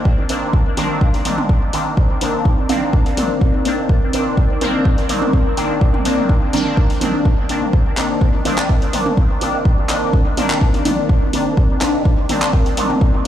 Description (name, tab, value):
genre	dub techno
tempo	125 BPM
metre	4/4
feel	straight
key	C minor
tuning	A4 = 440 Hz
part	resonant sweep polysynth	stabs	0.0-12.9 s	Eb3 to D4	-19 LUFS	equal	chorus, phaser, dub echo
part	deep dark ambient pad	sustained chords	1.4-13.3 s	C4 to D5	-24 LUFS	equal	chorus, built-in reverb, sidechain pumping
part	electronic kick drum	drums	0.1-13.1 s	none	-15 LUFS	equal	none
part	deep house drum kit	drums	0.3-12.9 s	handclaps, hi-hat	-25 LUFS	equal	none
part	electronic toms	percussion	0.8-13.0 s	none	-27 LUFS	equal	overdrive, sidechain pumping on toms, dub echo
room	light reverb, digital ambience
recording	played on a big sound system in a bare room, stone room reverb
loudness	-14 LUFS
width	side -11 dB against mid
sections	0.0-7.7 A section; 7.7-13.3 A section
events	none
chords	0.0 Cm9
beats	| 0.05 0.53 1.01 1.49 | 1.97 2.45 2.93 3.41 | 3.89 4.37 4.85 5.33 | 5.81 6.29 6.77 7.25 | 7.73 8.21 8.69 9.17 | 9.65 10.13 10.61 11.09 | 11.57 12.05 12.53 13.01